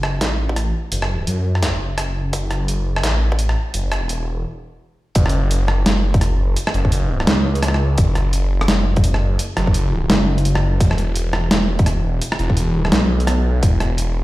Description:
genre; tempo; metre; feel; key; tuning
half-time drum and bass; 170 BPM; 4/4; swing 59% on 16ths, half-time; F# minor; A4 = 439 Hz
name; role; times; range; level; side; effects
phased detuned saw bass; bass; 0.0-14.2 s; E1 to F#2; -18 LUFS; equal; phaser
boom bap sampler-style drum kit; drums; 0.0-14.1 s; hi-hat, rim click, snare drum; -21 LUFS; equal; high-pass filter on hats, studio reverb, high-pass filter on snare
electronic kick drum; drums; 0.5-13.7 s; none; -16 LUFS; equal; high-pass filter on kick, studio reverb, high-pass filter on room
room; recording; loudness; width
light reverb; played on a big sound system in a bare room, stone room reverb; -16 LUFS; side -17 dB against mid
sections
0.0-5.2 A section; 5.2-14.2 B section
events
build-up 0.0-5.2; stop 4.5-5.2; drop 5.2-14.2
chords
none

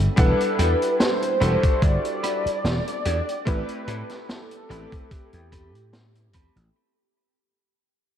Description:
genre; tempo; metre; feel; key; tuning
vaporwave; 73 BPM; 4/4; swing 54% on 16ths; unclear; A4 = 440 Hz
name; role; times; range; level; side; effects
bright electric grand piano; accompaniment; 0.0-6.8 s; G3 to F#5; -29 LUFS; left 1 dB; analog chorus, analog delay
clean electric guitar; riff; 0.0-6.6 s; C4 to E5; -35 LUFS; right 2 dB; wide subtle chorus, vintage 12-bit sampler grit, analog delay
vintage slap bass; bass; 0.0-6.7 s; E1 to A2; -23 LUFS; equal; none
warm velvety synth lead; melody; 0.2-6.3 s; G4 to D5; -26 LUFS; equal; chorus, tape echo
electronic kick drum; drums; 0.2-6.5 s; none; -21 LUFS; equal; none
vintage drum kit; drums; 0.2-6.7 s; hi-hat, snare drum; -28 LUFS; equal; none
room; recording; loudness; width
wet lush hall reverb, RT60 2.5 s; dreamy mix soaked in reverb; -20 LUFS; side -10 dB against mid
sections
0.0-6.8 A section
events
fade-out 0.0-6.8; clean electric guitar fill 0.0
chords
0.2 Em11; 3.5 Am9

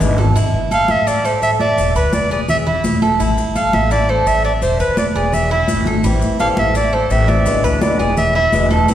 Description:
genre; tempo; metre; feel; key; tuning
latin, Cuban son and guajira; 169 BPM; 4/4; straight; A harmonic minor; A4 = 435 Hz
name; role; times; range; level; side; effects
fingerpicked acoustic archtop guitar; accompaniment; 0.0-0.4, 6.0-8.9 s; B2 to E4; -22 LUFS; left 2 dB; none
Cuban tres; arpeggios; 0.0-8.9 s; E4 to E5; -20 LUFS; right 3 dB; none
upright bass; bass; 0.0-8.9 s; E1 to D2; -19 LUFS; equal; none
congas; percussion; 0.0-8.9 s; none; -21 LUFS; left 1 dB; none
maracas; percussion; 0.0-8.9 s; none; -32 LUFS; left 4 dB; none
clear clarinet; melody; 0.7-8.7 s; B4 to F5; -18 LUFS; equal; none
room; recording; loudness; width
wet concert hall reverb, RT60 1.9 s; recorded in a church or concert hall, faint mains hum; -13 LUFS; side -11 dB against mid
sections
0.4-8.9 A section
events
drum fill 0.0-0.4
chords
0.4 A5; 1.8 E7; 3.2 A5; 4.6 E7; 6.0 Am7; 7.5 E7

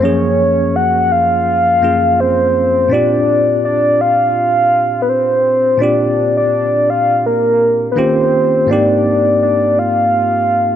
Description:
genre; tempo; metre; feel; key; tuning
R&B; 83 BPM; 4/4; swing 54% on 16ths; Bb mixolydian; A4 = 438 Hz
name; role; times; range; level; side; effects
soft octave-layered synth lead; melody; 0.0-10.8 s; Bb4 to Gb5; -12 LUFS; equal; chorus, ping-pong delay
bell-like tine electric piano; accompaniment; 0.0-10.8 s; Gb2 to Ab4; -17 LUFS; equal; fast stereo tremolo
room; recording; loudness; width
light reverb, digital ambience; none; -11 LUFS; side -10 dB against mid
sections
0.0-10.8 A section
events
none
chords
0.0 Gbmaj9; 2.9 Bb6; 8.0 Eb7; 8.7 Abmaj7

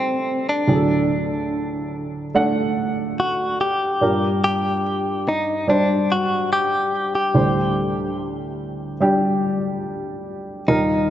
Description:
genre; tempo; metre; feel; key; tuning
pop ballad; 72 BPM; 4/4; straight; unclear; A4 = 440 Hz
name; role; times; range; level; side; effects
direct-recorded clean electric guitar; melody; 0.0-11.1 s; C4 to G4; -21 LUFS; left 1 dB; harmonic tremolo
warm upright piano; accompaniment; 0.0-11.1 s; D2 to F#5; -21 LUFS; right 1 dB; none
room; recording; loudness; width
moderate lush hall reverb, RT60 2.6 s; nothing above 7.8 kHz; -18 LUFS; side -11 dB against mid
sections
0.0-11.1 A section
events
none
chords
0.0 Am7; 0.7 D; 4.0 Gm; 7.3 D7sus4

